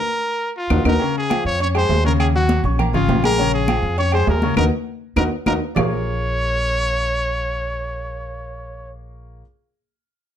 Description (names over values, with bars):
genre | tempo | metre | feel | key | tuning
latin, salsa | 202 BPM | 4/4 | straight | Bb minor | A4 = 441 Hz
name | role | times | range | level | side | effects
bright trumpet | melody | 0.0-8.9 s | F4 to Db5 | -23 LUFS | equal | none
bright upright piano | accompaniment | 0.7-9.4 s | Db3 to Db6 | -24 LUFS | left 5 dB | none
upright bass | bass | 0.7-9.4 s | Ab1 to F2 | -22 LUFS | equal | none
claves | percussion | 0.7-5.8 s | none | -31 LUFS | left 4 dB | none
congas | percussion | 0.7-5.8 s | none | -24 LUFS | left 1 dB | none
timbales and agogo bells | percussion | 0.7-5.8 s | none | -26 LUFS | right 7 dB | none
room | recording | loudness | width
light reverb | dark, warm production | -17 LUFS | side -9 dB against mid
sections
0.0-1.0 A section; 1.0-5.8 B section; 5.8-8.1 C section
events
band accent 0.0-1.0, 4.6-5.8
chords
0.0 Ebm; 1.0 Eb13sus4; 2.2 Ebm7; 3.4 Bbm7; 4.6 Ebm; 5.8 Bbm7